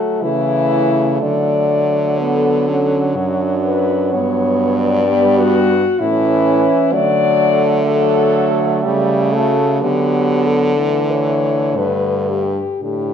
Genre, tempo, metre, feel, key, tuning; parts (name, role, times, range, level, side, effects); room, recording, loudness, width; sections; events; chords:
classical, lyrical piece for horn quartet; 56-66 BPM; 3/4; rubato; D major from 4.1 s; A4 = 440 Hz
warm French horn; melody; 0.0-13.1 s; E4 to D5; -18 LUFS; left 6 dB
mellow French horn; second line; 0.0-13.1 s; F#3 to D4; -20 LUFS; right 7 dB
mellow French horn; accompaniment; 0.0-13.1 s; D3 to A3; -20 LUFS; left 1 dB
clear French horn; bass; 0.2-13.1 s; F#2 to D3; -20 LUFS; right 2 dB
wet recital hall reverb, RT60 1.3 s; dark, warm production; -13 LUFS; side -8 dB against mid
0.0-13.1 A section
0.2 A/C#; 1.2 D; 4.1 G; 6.0 A; 6.9 D; 8.9 A7/C#; 9.8 D; 11.8 G